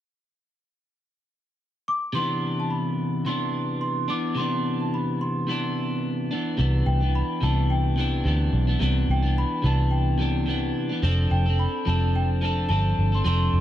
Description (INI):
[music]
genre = indie pop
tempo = 108 BPM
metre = 4/4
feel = swing 55% on 16ths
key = C major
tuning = A4 = 440 Hz
[part]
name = large celesta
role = melody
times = 1.9-13.6 s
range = G5 to D6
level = -30 LUFS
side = left 1 dB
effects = lush chorus, plate reverb, analog delay
[part]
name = electric guitar at the edge of break-up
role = accompaniment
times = 2.1-13.6 s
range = C3 to A4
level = -26 LUFS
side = equal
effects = wide subtle chorus, warbly pitch drift
[part]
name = vintage muted picked electric bass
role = bass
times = 6.6-13.6 s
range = F1 to D2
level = -22 LUFS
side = equal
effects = none
[sound]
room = light reverb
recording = none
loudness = -22 LUFS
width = side -12 dB against mid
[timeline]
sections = 0.0-2.1 A section; 2.1-6.6 B section; 6.6-13.6 C section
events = none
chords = 0.0 N.C.; 2.1 Cmaj9; 11.0 F6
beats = 0.47 1.03 1.59 | 2.14 2.70 3.25 3.81 | 4.37 4.92 5.48 6.03 | 6.59 7.14 7.70 8.25 | 8.81 9.37 9.92 10.48 | 11.03 11.59 12.14 12.70 | 13.26